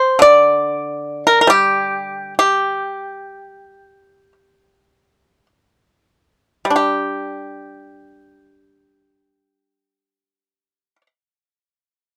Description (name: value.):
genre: chinese traditional, Chinese solo plucked strings.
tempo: 46-74 BPM.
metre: 4/4.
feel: rubato.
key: unclear.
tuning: A4 = 439 Hz.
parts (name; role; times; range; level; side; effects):
pipa; solo; 0.0-11.1 s; D3 to D5; -16 LUFS; equal; none.
room: light reverb.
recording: dark, warm production.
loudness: -16 LUFS.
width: mono.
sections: 0.0-6.8 A section; 6.8-11.7 B section.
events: slowing down 0.0-6.8.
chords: none.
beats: 0.63 1.49 | 2.37 3.31 4.33 5.49 | 6.78 8.03 9.23 10.44.